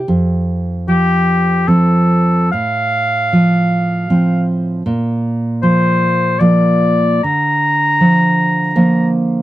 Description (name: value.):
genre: romantic duo for oboe and classical guitar.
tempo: 76 BPM.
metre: 3/4.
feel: uneven beats, rubato.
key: F major.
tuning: A4 = 440 Hz.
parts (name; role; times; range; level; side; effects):
nylon-string guitar; accompaniment; 0.0-9.4 s; F2 to C4; -13 LUFS; right 1 dB; none.
warm oboe; melody; 0.9-9.1 s; G4 to Bb5; -15 LUFS; left 2 dB; none.
room: light reverb.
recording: dry, close 1970s-style studio recording.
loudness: -12 LUFS.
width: side -15 dB against mid.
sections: 0.1-9.4 A section.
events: none.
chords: 0.1 F; 2.5 F/A; 4.9 Bb; 7.2 Bb/D.